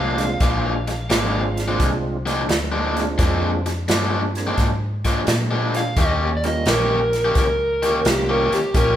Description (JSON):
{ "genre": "electric blues shuffle", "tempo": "86 BPM", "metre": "4/4", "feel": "swing 68% on 8ths", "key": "Bb mixolydian", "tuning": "A4 = 440 Hz", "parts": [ { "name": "overdriven slide guitar", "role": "melody", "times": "0.0-9.0 s", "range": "G4 to F5", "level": "-22 LUFS", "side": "equal", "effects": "none" }, { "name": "raw garage guitar", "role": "riff", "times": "0.0-9.0 s", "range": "Bb2 to G4", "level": "-23 LUFS", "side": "left 1 dB", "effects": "overdrive" }, { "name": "vintage muted fingered electric bass", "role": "bass", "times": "0.0-9.0 s", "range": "Ab1 to Bb2", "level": "-25 LUFS", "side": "equal", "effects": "none" }, { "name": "percussive tonewheel organ", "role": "accompaniment", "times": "0.2-9.0 s", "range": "G3 to Ab4", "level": "-28 LUFS", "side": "right 3 dB", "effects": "slow rotary speaker, overdrive, chorus vibrato" }, { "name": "swinging big-band drum kit", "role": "drums", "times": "0.2-9.0 s", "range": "hi-hat, kick drum, snare drum", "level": "-23 LUFS", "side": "equal", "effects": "none" } ], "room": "moderate large studio reverb, RT60 1.1 s", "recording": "band playing live in one room", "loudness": "-18 LUFS", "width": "side -11 dB against mid", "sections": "0.0-9.0 A section", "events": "none", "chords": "0.0 Bb7; 6.0 Eb7" }